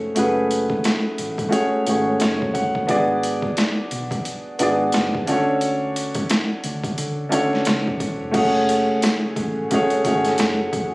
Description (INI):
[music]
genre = hip hop, boom-bap hip-hop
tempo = 88 BPM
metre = 4/4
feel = swing 58% on 16ths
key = F# minor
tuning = A4 = 440 Hz
[part]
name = dark upright piano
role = accompaniment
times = 0.0-10.9 s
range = A3 to F#5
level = -20 LUFS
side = equal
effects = high-pass filter, low-pass filter
[part]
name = hollow-body short-scale picked electric bass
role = bass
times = 0.0-10.9 s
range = E1 to D3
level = -31 LUFS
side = equal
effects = none
[part]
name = boom bap sampler-style drum kit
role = drums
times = 0.2-10.9 s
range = crash cymbal, hi-hat, kick drum, snare drum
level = -23 LUFS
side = equal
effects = overdrive
[part]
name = tonewheel organ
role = sustained chords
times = 8.3-10.9 s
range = C#3 to G#4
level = -25 LUFS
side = equal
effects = none
[part]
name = tambourine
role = percussion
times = 9.0-10.6 s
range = none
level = -37 LUFS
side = left 1 dB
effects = none
[sound]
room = light reverb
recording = recorded on a phone in the room, studio reverb, vinyl crackle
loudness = -18 LUFS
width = side -24 dB against mid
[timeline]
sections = 0.0-8.3 A section; 8.3-10.9 B section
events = none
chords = 0.0 F#madd9; 2.9 G#m7b5; 5.3 Dmaj7; 8.3 F#madd9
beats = | 0.16 0.84 1.52 2.21 | 2.89 3.57 4.25 4.93 | 5.62 6.30 6.98 7.66 | 8.34 9.02 9.71 10.39